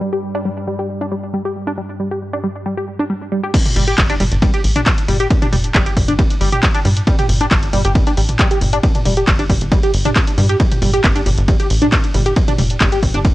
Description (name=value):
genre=driving peak-time techno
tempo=136 BPM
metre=4/4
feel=straight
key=unclear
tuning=A4 = 442 Hz
part: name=tight sequenced synth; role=riff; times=0.0-13.3 s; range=G3 to G4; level=-20 LUFS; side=equal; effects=chorus, phaser, tube saturation, sidechain pumping, analog delay
part: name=deep dark ambient pad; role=drone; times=0.0-3.6 s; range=G2 to G3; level=-28 LUFS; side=equal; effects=chorus, built-in reverb, sidechain pumping
part: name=electronic kick drum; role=drums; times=3.5-13.3 s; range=none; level=-15 LUFS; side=equal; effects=overdrive
part: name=punchy analog drum machine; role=drums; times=3.5-13.3 s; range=crash cymbal, handclaps, hi-hat, ride cymbal, toms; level=-20 LUFS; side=equal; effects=none
part: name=tight sequencer bass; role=bass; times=3.8-13.3 s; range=F1 to G2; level=-18 LUFS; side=equal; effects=sidechain pumping
room=digital ambience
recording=dry, gritty hardware recording, cassette tape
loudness=-13 LUFS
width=side -17 dB against mid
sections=0.0-3.5 A section; 3.5-13.3 B section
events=filter sweep on synth arpeggio sound 0.0-3.5; drop 3.5-13.3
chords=0.0 G5; 3.5 N.C.